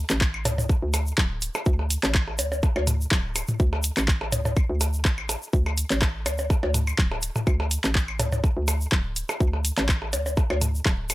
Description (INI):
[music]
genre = minimal techno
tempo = 124 BPM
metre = 4/4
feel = swing 54% on 16ths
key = unclear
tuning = A4 = 437 Hz
[part]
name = hollow knocking FM bass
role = bass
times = 0.0-11.1 s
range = D1 to D2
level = -26 LUFS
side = equal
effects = sidechain pumping
[part]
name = punchy analog drum machine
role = drums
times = 0.1-11.1 s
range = handclaps, hi-hat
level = -27 LUFS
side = equal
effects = none
[part]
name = egg shaker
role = percussion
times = 0.1-11.1 s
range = none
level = -34 LUFS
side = equal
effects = none
[part]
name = electronic percussion blips and toms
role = percussion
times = 0.1-11.1 s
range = none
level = -29 LUFS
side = equal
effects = overdrive
[part]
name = electronic kick drum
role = drums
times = 0.2-11.0 s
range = none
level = -22 LUFS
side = equal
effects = none
[sound]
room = little or no reverb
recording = none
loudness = -22 LUFS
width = side -18 dB against mid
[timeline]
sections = 0.0-11.1 A section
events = none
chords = none